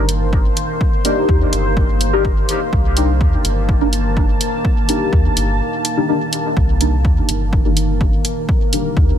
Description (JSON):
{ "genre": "dub techno", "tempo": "125 BPM", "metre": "4/4", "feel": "straight", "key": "C dorian", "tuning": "A4 = 440 Hz", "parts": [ { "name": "deep dark ambient pad", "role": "sustained chords", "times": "0.0-9.2 s", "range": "Eb3 to A5", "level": "-22 LUFS", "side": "equal", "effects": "chorus, built-in reverb, sidechain pumping" }, { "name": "deep mellow chord stab", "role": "stabs", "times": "0.0-9.2 s", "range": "D4 to Bb4", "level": "-21 LUFS", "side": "left 2 dB", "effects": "chorus, phaser, sidechain pumping, dub echo" }, { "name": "soft dub sub bass", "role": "bass", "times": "0.0-9.1 s", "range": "G1 to Eb2", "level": "-18 LUFS", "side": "equal", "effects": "sidechain pumping" }, { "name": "electronic hi-hat", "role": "drums", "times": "0.1-8.8 s", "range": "none", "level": "-22 LUFS", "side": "equal", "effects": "overdrive" }, { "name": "electronic kick drum", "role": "drums", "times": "0.3-9.1 s", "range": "none", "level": "-17 LUFS", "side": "equal", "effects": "overdrive" }, { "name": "bubbling stepped-filter texture", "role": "texture", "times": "6.8-9.2 s", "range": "Eb3", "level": "-28 LUFS", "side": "right 3 dB", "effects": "chorus, built-in reverb, sidechain pumping" } ], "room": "digital ambience", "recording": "none", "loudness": "-14 LUFS", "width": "side -10 dB against mid", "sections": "0.0-9.2 A section", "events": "break 5.6-6.6", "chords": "0.0 Cm7", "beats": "0.33 | 0.81 1.29 1.77 2.25 | 2.73 3.21 3.69 4.17 | 4.65 5.13 5.61 6.09 | 6.57 7.05 7.53 8.01 | 8.49 8.97" }